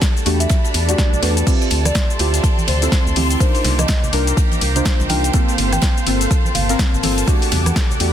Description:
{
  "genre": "deep house",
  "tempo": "124 BPM",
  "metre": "4/4",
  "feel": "swing 59% on 16ths",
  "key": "unclear",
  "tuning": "A4 = 439 Hz",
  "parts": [
    { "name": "deep mellow chord stab", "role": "stabs", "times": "0.0-8.1 s", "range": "A3 to C5", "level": "-22 LUFS", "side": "equal", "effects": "chorus, sidechain pumping, digital delay" },
    { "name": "crisp fusion drum kit", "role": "drums", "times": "0.0-8.1 s", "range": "hi-hat, ride cymbal, snare drum", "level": "-28 LUFS", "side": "right 3 dB", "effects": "sidechain pumping on cymbals, high-pass filter on cymbals, sidechain pumping on hats, high-pass filter on hats, high-pass filter on snare, high-pass filter on room" },
    { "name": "deep house drum kit", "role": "drums", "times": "0.0-8.1 s", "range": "cabasa, crash cymbal, hi-hat, rim click, snare drum", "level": "-23 LUFS", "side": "left 2 dB", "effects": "overdrive" },
    { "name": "electronic kick drum", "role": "drums", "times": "0.0-7.9 s", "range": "none", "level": "-17 LUFS", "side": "equal", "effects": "overdrive" },
    { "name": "rich studio string section", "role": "texture", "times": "0.0-8.1 s", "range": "G4 to C6", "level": "-26 LUFS", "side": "right 1 dB", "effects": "sidechain pumping" },
    { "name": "organ-like FM bass", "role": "bass", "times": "0.3-8.1 s", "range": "G1 to E2", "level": "-19 LUFS", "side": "equal", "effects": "sidechain pumping" },
    { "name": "marimba with soft mallets", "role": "melody", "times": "0.4-6.8 s", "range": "B4 to G5", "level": "-28 LUFS", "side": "equal", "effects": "ping-pong delay" },
    { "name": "swell", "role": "sound effects", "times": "0.6-1.5 s", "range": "none", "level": "-28 LUFS", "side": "right 3 dB", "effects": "none" },
    { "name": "warm analog pad", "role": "sustained chords", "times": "1.5-8.1 s", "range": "Bb3 to D6", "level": "-30 LUFS", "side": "right 1 dB", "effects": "chorus, sidechain pumping" },
    { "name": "congas", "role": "percussion", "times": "1.9-8.0 s", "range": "none", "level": "-27 LUFS", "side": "right 4 dB", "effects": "none" }
  ],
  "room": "small room ambience",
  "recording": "dense, heavily limited modern master",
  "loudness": "-14 LUFS",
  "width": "side -10 dB against mid",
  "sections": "0.0-8.1 A section",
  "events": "swell 0.6-1.5",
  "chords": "0.0 Em11; 1.5 Dm11; 3.4 Cm11; 5.3 Gm11; 7.3 Em11",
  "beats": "0.02 0.50 0.98 | 1.47 1.95 2.44 2.92 | 3.40 3.89 4.37 4.86 | 5.34 5.82 6.31 6.79 | 7.27 7.76"
}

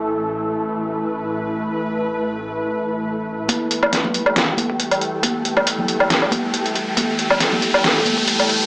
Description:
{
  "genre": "deep dubstep",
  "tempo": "138 BPM",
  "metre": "4/4",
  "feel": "swing 55% on 16ths, half-time",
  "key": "unclear",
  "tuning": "A4 = 436 Hz",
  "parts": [
    { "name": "bowed-like drone", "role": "sustained chords", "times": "0.0-8.7 s", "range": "E3 to B4", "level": "-24 LUFS", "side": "equal", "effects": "built-in reverb" },
    { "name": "dark detuned saw bass", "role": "bass", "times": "0.0-3.5 s", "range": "A1", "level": "-35 LUFS", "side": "equal", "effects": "none" },
    { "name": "wind-like tuned noise texture", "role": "texture", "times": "0.0-8.7 s", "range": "G3 to G4", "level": "-25 LUFS", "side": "equal", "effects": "built-in reverb" },
    { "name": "electronic kick drum", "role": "drums", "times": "3.5-8.3 s", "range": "none", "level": "-30 LUFS", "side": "equal", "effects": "none" },
    { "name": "trip hop sampler-style drum kit", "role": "drums", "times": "3.5-8.6 s", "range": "hi-hat, snare drum, woodblock", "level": "-18 LUFS", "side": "equal", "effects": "overdrive, low-pass filter on hats, low-pass filter on perc, low-pass filter on snare" },
    { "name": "congas", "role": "percussion", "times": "3.5-8.2 s", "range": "none", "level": "-26 LUFS", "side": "equal", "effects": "dub echo" },
    { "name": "riser", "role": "sound effects", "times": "5.8-8.7 s", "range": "none", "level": "-23 LUFS", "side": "left 1 dB", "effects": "none" }
  ],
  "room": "light reverb, digital ambience",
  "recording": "dry, gritty hardware recording, small speaker sound",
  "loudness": "-17 LUFS",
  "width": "side -26 dB against mid",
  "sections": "0.0-3.5 A section; 3.5-8.7 B section",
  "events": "filter sweep on synth drone 0.0-3.5; build-up 3.5-8.7; riser 5.8-8.7",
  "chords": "0.0 A5",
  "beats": "| 0.01 0.45 0.88 1.32 | 1.75 2.19 2.62 3.06 | 3.49 3.93 4.36 4.80 | 5.23 5.67 6.10 6.54 | 6.97 7.41 7.84 8.28"
}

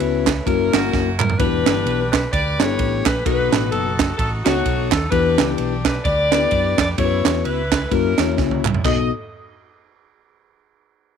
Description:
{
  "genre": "uptempo gospel",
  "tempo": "129 BPM",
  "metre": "4/4",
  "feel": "swing 58% on 8ths",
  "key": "B minor",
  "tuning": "A4 = 439 Hz",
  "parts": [
    { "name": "edgy saxophone section", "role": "melody", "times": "0.0-9.1 s", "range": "A3 to D#5", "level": "-22 LUFS", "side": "left 1 dB", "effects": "none" },
    { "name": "mellow tine electric piano", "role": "accompaniment", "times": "0.0-9.1 s", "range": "B1 to C#5", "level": "-22 LUFS", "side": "left 15 dB", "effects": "medium stereo tremolo" },
    { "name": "hollow-body short-scale fingered electric bass", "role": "bass", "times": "0.0-9.1 s", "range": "E1 to F#2", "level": "-24 LUFS", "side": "right 1 dB", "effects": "none" },
    { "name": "crisp fusion drum kit", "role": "drums", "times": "0.0-9.0 s", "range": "crash cymbal, kick drum, ride cymbal, snare drum, toms", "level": "-21 LUFS", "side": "right 5 dB", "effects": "none" },
    { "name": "group handclap", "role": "percussion", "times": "0.3-9.1 s", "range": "none", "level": "-26 LUFS", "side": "right 14 dB", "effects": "none" }
  ],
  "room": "light reverb, small room ambience",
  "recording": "1960s-style stereo with parts hard left and right",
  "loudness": "-16 LUFS",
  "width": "side -7 dB against mid",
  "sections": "0.0-1.4 A section; 1.4-8.8 B section; 8.8-10.7 C section",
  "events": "drum fill 0.9-1.4, 8.4-8.8",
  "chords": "0.5 F#7; 1.4 Em7; 3.3 B7; 5.1 Em7; 7.0 F#7sus4; 7.9 F#7; 8.8 B7",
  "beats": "0.00 0.47 0.93 | 1.40 1.86 2.33 2.79 | 3.26 3.72 4.19 4.66 | 5.12 5.59 6.05 6.52 | 6.98 7.45 7.92 8.38 | 8.85"
}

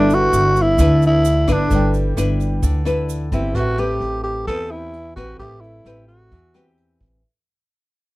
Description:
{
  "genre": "bossa nova",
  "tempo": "130 BPM",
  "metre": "4/4",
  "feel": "straight",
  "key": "unclear",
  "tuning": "A4 = 441 Hz",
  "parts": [
    { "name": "growling tenor saxophone", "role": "melody", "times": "0.0-6.7 s", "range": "D4 to A4", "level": "-18 LUFS", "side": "equal", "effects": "none" },
    { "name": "nylon-string guitar", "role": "accompaniment", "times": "0.0-7.2 s", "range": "D3 to B4", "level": "-24 LUFS", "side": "left 4 dB", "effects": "none" },
    { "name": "warm concert grand piano", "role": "accompaniment", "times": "0.0-7.3 s", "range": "G4 to G5", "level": "-30 LUFS", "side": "right 4 dB", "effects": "none" },
    { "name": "upright bass", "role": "bass", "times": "0.0-7.2 s", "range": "G1 to E2", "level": "-20 LUFS", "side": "equal", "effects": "none" },
    { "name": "vintage brush drum kit", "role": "drums", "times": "0.1-7.1 s", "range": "hi-hat, kick drum, rim click", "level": "-24 LUFS", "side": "equal", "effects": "none" },
    { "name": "egg shaker", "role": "percussion", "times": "0.1-3.6 s", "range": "none", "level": "-37 LUFS", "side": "right 21 dB", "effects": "none" }
  ],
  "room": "little or no reverb",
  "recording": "none",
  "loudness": "-15 LUFS",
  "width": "side -19 dB against mid",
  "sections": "0.0-7.2 A section",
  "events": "fade-out 0.0-7.2",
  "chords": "0.0 G6; 3.5 Am9",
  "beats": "0.32 0.78 1.24 | 1.71 2.17 2.63 3.09 | 3.55 4.01 4.47 4.93 | 5.39 5.86 6.32 6.78"
}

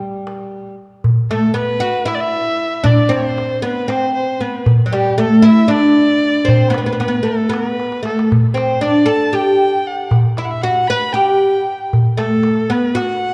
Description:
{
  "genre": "Turkish makam ensemble",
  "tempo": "231 BPM (eighths)",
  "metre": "7/8",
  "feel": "straight",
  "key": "G makam rast",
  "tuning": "A4 = 440 Hz",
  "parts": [
    { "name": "oud", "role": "melody", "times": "0.0-13.3 s", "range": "F#3 to B4", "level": "-17 LUFS", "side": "equal", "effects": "none" },
    { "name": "darbuka", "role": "percussion", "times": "0.3-13.1 s", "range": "none", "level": "-19 LUFS", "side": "equal", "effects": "none" },
    { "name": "rich kamancheh", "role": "second line", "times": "1.3-13.3 s", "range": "G4 to B5", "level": "-24 LUFS", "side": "equal", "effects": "none" }
  ],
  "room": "moderate concert hall reverb, RT60 2.3 s",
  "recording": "dark, warm production",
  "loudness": "-15 LUFS",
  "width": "mono",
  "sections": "0.0-1.0 A section; 1.0-13.3 B section",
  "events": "drum fill 7.8-8.3",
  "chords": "none",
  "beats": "0.25 0.51 0.77 | 1.03 1.29 1.55 1.81 2.07 2.33 2.59 | 2.85 3.11 3.37 3.63 3.89 4.15 4.41 | 4.67 4.93 5.19 5.45 5.71 5.97 6.23 | 6.49 6.75 7.01 7.27 7.53 7.79 8.04 | 8.30 8.56 8.82 9.08 9.34 9.60 9.86 | 10.12 10.38 10.64 10.90 11.16 11.42 11.68 | 11.94 12.19 12.45 12.71 12.97 13.23"
}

